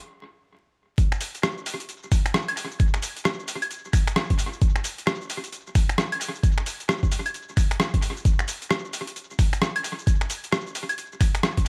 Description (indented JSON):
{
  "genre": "UK garage",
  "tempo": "132 BPM",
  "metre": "4/4",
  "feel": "swing 62% on 16ths",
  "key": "none",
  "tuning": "none",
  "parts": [
    { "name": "boom bap sampler-style drum kit", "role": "drums", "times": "1.0-11.7 s", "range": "claves, finger snaps, hi-hat, rim click, shaker", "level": "-29 LUFS", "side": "equal", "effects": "overdrive, small room ambience, tape echo" },
    { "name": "electronic kick drum", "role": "drums", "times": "1.0-11.6 s", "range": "none", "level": "-23 LUFS", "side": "equal", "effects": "overdrive, small room ambience" }
  ],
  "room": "light reverb",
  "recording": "echo-heavy mix, vinyl crackle",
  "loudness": "-25 LUFS",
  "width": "mono",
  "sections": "1.0-11.7 A section",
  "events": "stop 0.1-1.0; drop 1.0-11.7",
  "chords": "none"
}